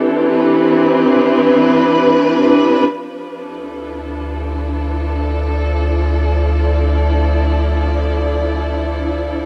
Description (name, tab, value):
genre	ambient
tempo	free time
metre	none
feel	none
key	unclear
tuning	A4 = 439 Hz
part	dark studio string section	sustained chords	0.0-9.5 s	E3 to D5	-17 LUFS	equal	cassette tape
part	deep rumbling drone	bass	4.0-9.5 s	D2	-19 LUFS	equal	built-in reverb
room	wet studio reverb, RT60 0.5 s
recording	home recording on cassette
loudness	-15 LUFS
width	mono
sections	0.0-2.9 A section; 2.9-9.5 B section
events	none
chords	0.0 Cmaj9; 2.9 Dmadd9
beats	free time